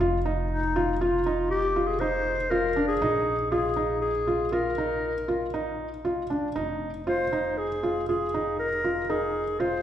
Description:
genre	contemporary instrumental, contemporary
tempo	119 BPM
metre	7/4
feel	straight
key	F minor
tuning	A4 = 440 Hz
part	growling clarinet	melody	0.0-9.8 s	Eb4 to C5	-27 LUFS	left 1 dB	none
part	felt-muted upright piano	arpeggios	0.0-9.8 s	D4 to F4	-28 LUFS	equal	none
part	upright bass	bass	0.0-9.8 s	F1 to Bb1	-35 LUFS	equal	none
room	wet recital hall reverb, RT60 1.7 s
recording	heard from further back in the room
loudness	-24 LUFS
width	side -10 dB against mid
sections	0.0-9.8 A section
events	none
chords	0.0 F5; 3.0 Bb7sus4; 6.6 Fm7

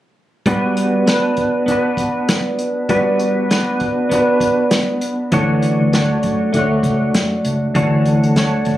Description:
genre	indie pop, bedroom pop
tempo	99 BPM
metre	4/4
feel	swing 60% on 16ths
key	G lydian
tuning	A4 = 440 Hz
part	clean electric guitar	accompaniment	0.5-8.8 s	D3 to C#5	-15 LUFS	equal	wide subtle chorus, vibrato effect
part	unplugged drum kit	drums	0.5-8.8 s	hi-hat, kick drum, snare drum	-20 LUFS	equal	none
part	vintage muted fingered electric bass	bass	5.3-8.8 s	C#2 to F#2	-21 LUFS	equal	none
room	moderate studio reverb, RT60 0.5 s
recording	recorded on a phone in the room, club reverb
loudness	-14 LUFS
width	side -14 dB against mid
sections	0.5-8.8 A section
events	none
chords	0.5 Gmaj7; 5.3 Dmaj9

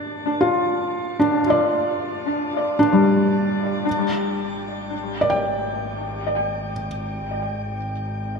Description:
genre	ambient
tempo	57 BPM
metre	3/4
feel	straight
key	unclear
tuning	A4 = 443 Hz
part	felt-muted upright piano	arpeggios	0.0-8.4 s	G3 to G5	-20 LUFS	equal	tape echo, shimmer reverb
part	muted studio double bass section	bass	3.9-8.4 s	Ab1	-32 LUFS	right 1 dB	tube saturation
part	glass harmonica	texture	3.9-8.4 s	G5	-35 LUFS	left 2 dB	shimmer reverb
room	wet spring reverb, RT60 2.6 s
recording	echo-heavy mix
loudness	-20 LUFS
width	side -5 dB against mid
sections	0.0-3.9 A section; 3.9-8.4 B section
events	fade-in on double bass section 3.9-8.4; fade-in on glass harmonica 3.9-8.4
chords	0.0 G5; 3.9 N.C.

